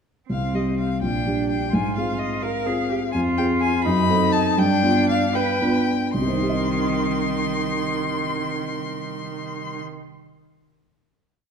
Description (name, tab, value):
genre	quick classical-period movement for piano trio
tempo	73-86 BPM (dotted quarters)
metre	6/8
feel	rubato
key	C minor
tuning	A4 = 440 Hz
part	clear violin	melody	0.3-9.8 s	Eb5 to C6	-26 LUFS	left 7 dB	none
part	clear cello	second line	0.3-9.8 s	Eb3 to B4	-26 LUFS	right 6 dB	none
part	dark concert grand piano	accompaniment	0.3-10.1 s	Bb1 to Eb5	-23 LUFS	equal	none
room	wet recital hall reverb, RT60 1.4 s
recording	dark, warm production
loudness	-20 LUFS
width	side -6 dB against mid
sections	0.3-6.1 A section; 6.1-9.2 final chord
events	slowing down 2.4-6.1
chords	0.3 C5; 1.0 Gm/Bb; 1.7 Fm/Ab; 3.1 Fm; 3.9 F#dim7; 4.6 G7; 6.1 Cm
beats	| 0.30 1.02 | 1.73 2.43 | 3.15 3.86 | 4.59 5.35 | 6.14 6.91 | 7.68 8.45